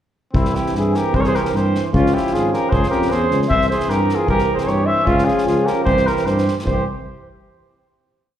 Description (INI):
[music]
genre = balkan folk, Balkan brass band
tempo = 152 BPM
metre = 2/4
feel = straight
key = C phrygian dominant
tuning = A4 = 440 Hz
[part]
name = warm flugelhorn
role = melody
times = 0.3-6.8 s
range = E4 to E5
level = -20 LUFS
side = equal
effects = slapback echo
[part]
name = warm trumpet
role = second line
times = 0.3-6.9 s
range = C4 to C5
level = -25 LUFS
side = left 1 dB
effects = slapback echo
[part]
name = clear trombone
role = accompaniment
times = 0.3-6.8 s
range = E3 to F3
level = -25 LUFS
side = right 5 dB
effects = slapback echo
[part]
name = warm euphonium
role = accompaniment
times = 0.3-6.8 s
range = C4 to Db4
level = -28 LUFS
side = left 6 dB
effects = slapback echo
[part]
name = mellow tuba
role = bass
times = 0.3-6.8 s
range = Ab1 to G2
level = -20 LUFS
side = equal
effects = none
[part]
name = unplugged drum kit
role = percussion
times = 0.3-6.8 s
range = kick drum, snare drum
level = -24 LUFS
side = equal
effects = none
[sound]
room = light reverb, studio ambience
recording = live gig heard through the venue's PA, club reverb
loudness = -15 LUFS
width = side -10 dB against mid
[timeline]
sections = 0.3-6.7 A section; 6.7-7.4 final chord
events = none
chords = 0.3 C; 1.9 Db; 3.5 C; 5.1 Db; 5.9 C